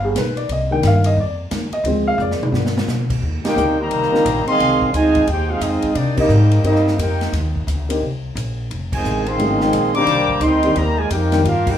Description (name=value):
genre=jazz, big band swing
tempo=175 BPM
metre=4/4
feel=swing 63% on 8ths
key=C minor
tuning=A4 = 440 Hz
part: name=warm baby grand piano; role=accompaniment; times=0.0-11.4 s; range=Eb3 to G5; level=-20 LUFS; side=left 2 dB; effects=none
part: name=upright bass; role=bass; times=0.0-11.8 s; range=F1 to C3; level=-20 LUFS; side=equal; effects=none
part: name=swinging big-band drum kit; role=drums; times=0.2-11.7 s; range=crash cymbal, hi-hat, kick drum, ride cymbal, snare drum, toms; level=-26 LUFS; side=equal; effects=none
part: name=clear trombone section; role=second line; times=3.4-11.8 s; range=C3 to G4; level=-19 LUFS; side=right 2 dB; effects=none
part: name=clear trumpet section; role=melody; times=3.5-11.8 s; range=Bb3 to D6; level=-21 LUFS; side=left 1 dB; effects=none
room=wet studio reverb, RT60 0.5 s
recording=rough home demo mix, small room ambience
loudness=-15 LUFS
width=side -10 dB against mid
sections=0.0-3.2 A section; 3.2-11.8 B section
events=grand piano solo 0.0-3.2; drum fill 2.2-2.9; band accent 3.4, 6.1, 8.9, 11.6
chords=0.5 Cm7; 1.9 Dm7b5; 2.5 G7; 3.2 Cm7; 4.6 Fm7; 6.0 Cm7; 8.7 Fm7; 10.1 Cm7